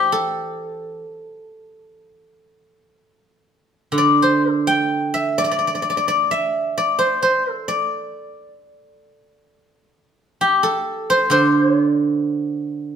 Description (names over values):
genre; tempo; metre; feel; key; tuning
chinese traditional, Chinese solo plucked strings; 65 BPM; 4/4; rubato; unclear; A4 = 440 Hz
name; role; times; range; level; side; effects
guzheng; solo; 0.0-13.0 s; D3 to G5; -17 LUFS; equal; none
room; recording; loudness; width
wet stone room reverb, RT60 1.1 s; band playing live in one room; -16 LUFS; side -8 dB against mid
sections
0.0-13.0 A section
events
none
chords
none